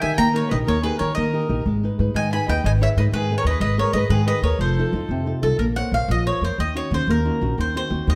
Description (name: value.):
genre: italian folk, Italian serenade.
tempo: 121 BPM (dotted quarters).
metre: 6/8.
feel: rubato.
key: G# harmonic minor.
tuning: A4 = 440 Hz.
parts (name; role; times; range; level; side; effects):
mandolin; melody; 0.0-8.2 s; A4 to B5; -28 LUFS; equal; none.
warm violin; second line; 0.0-5.2 s; G#4 to G#5; -31 LUFS; equal; none.
flamenco guitar; accompaniment; 0.0-8.2 s; C3 to Db5; -27 LUFS; equal; none.
upright bass; bass; 0.0-8.2 s; F1 to D#3; -24 LUFS; equal; none.
room: light reverb.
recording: none.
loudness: -21 LUFS.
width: mono.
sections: 0.0-5.6 A section; 5.6-8.2 B section.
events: none.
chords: 0.0 D#; 1.7 G#m; 3.6 G#madd9; 4.6 F7; 5.6 Bbmadd9; 6.6 Ebm7; 7.6 Cdim/Eb.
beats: 0.17 | 0.67 1.17 | 1.67 2.17 | 2.65 3.14 | 3.62 4.11 | 4.60 5.10 | 5.60 6.09 | 6.59 7.09 | 7.58 8.07.